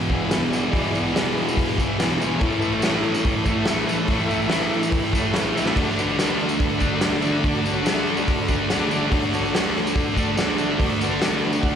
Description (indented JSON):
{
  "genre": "garage rock duo or trio",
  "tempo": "143 BPM",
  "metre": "4/4",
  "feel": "straight",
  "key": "unclear",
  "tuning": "A4 = 441 Hz",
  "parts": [
    { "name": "combo organ", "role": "sustained chords", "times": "0.0-11.8 s", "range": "E4 to F#5", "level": "-30 LUFS", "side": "equal", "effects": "none" },
    { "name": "thick fuzz guitar", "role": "riff", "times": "0.0-11.8 s", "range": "E2 to D4", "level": "-21 LUFS", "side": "equal", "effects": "distortion, slapback echo" },
    { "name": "raw garage drum kit", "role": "drums", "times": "0.1-11.7 s", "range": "crash cymbal, hi-hat, kick drum, snare drum", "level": "-24 LUFS", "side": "equal", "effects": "none" },
    { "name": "tambourine", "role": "percussion", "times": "0.3-11.7 s", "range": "none", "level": "-38 LUFS", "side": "right 2 dB", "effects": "none" }
  ],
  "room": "light reverb",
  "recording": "live gig heard through the venue's PA, recital hall reverb",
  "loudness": "-19 LUFS",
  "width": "side -8 dB against mid",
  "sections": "0.0-11.8 A section",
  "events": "drum fill 5.6; transistor combo organ fill 11.2-11.8",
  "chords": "0.0 E; 2.4 A; 5.8 D",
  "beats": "0.31 | 0.73 1.15 1.57 1.99 | 2.41 2.83 3.25 3.67 | 4.09 4.51 4.93 5.35 | 5.77 6.19 6.61 7.03 | 7.44 7.86 8.28 8.70 | 9.12 9.53 9.95 10.37 | 10.79 11.21 11.62"
}